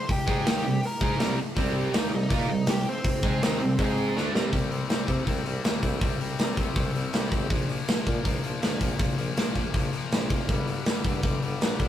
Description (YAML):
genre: punk rock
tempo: 161 BPM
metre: 4/4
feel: straight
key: C minor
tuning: A4 = 440 Hz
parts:
  - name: bluesy overdriven lead guitar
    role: melody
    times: 0.0-4.1 s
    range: C4 to C6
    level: -31 LUFS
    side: equal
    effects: distortion
  - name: big rock drum kit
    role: drums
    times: 0.1-11.9 s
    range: hi-hat, kick drum, snare drum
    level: -26 LUFS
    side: equal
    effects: none
  - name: distorted electric guitar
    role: riff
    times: 0.3-11.9 s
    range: G2 to Bb4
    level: -33 LUFS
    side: left 5 dB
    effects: overdrive
  - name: distorted electric guitar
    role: riff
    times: 0.3-4.5 s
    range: C3 to Bb4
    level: -28 LUFS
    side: right 4 dB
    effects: distortion
  - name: warm tuba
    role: bass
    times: 0.3-11.9 s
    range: F1 to C3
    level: -32 LUFS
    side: equal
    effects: none
room: light reverb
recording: rough rehearsal-room recording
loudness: -24 LUFS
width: side -11 dB against mid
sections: 0.0-4.5 A section; 4.5-11.9 B section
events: drum fill 4.2-4.5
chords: 0.0 Cm; 3.8 Ab5; 4.2 C5; 7.5 Bb5; 10.5 Gm